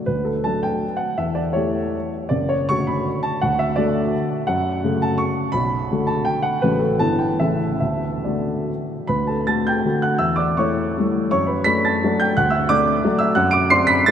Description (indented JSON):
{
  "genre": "classical, romantic triple-time dance for piano with dotted rhythms",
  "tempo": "128-188 BPM",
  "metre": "3/4",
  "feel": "rubato",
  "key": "D major",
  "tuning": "A4 = 440 Hz",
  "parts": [
    { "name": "dark baby grand piano", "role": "solo", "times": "0.0-14.1 s", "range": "F#1 to D7", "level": "-18 LUFS", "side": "equal", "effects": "none" }
  ],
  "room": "wet cathedral reverb, RT60 5.8 s",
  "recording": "in a vast, echoing space",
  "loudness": "-18 LUFS",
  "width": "side -8 dB against mid",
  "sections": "0.1-9.1 A section; 9.1-14.1 A section",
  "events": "none",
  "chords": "0.1 D; 1.2 A7/E; 2.3 D/F#; 3.4 D; 4.5 F#m; 5.5 Bm7; 6.6 F#m/A; 7.0 Em/G; 7.4 A; 7.8 D; 10.2 A7/E; 11.3 D/F#; 12.4 D; 13.4 D7/F#"
}